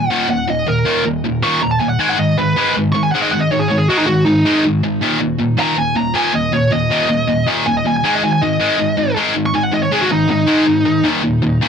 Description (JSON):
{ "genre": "metal", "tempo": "159 BPM", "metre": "4/4", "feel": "straight", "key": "Eb minor", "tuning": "A4 = 440 Hz", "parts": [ { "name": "high-gain lead guitar", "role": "melody", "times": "0.0-11.0 s", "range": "Eb4 to Db6", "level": "-17 LUFS", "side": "right 1 dB", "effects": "distortion, tape echo" }, { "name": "distorted electric guitar", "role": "riff", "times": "0.0-11.7 s", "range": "Eb2 to Ab3", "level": "-15 LUFS", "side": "equal", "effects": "overdrive" } ], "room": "light reverb", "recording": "dry, close 1970s-style studio recording", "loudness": "-13 LUFS", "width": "side -7 dB against mid", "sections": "0.0-11.7 A section", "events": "lead electric guitar solo 0.0-11.7", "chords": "0.0 Eb5; 2.0 Ab5; 5.0 Eb5; 8.0 Ab5; 11.0 Eb5", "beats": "0.10 | 0.47 0.85 1.23 1.61 | 1.99 2.37 2.75 3.13 | 3.50 3.88 4.26 4.64 | 5.02 5.40 5.78 6.15 | 6.53 6.91 7.29 7.66 | 8.04 8.42 8.79 9.17 | 9.55 9.92 10.30 10.67 | 11.05 11.42" }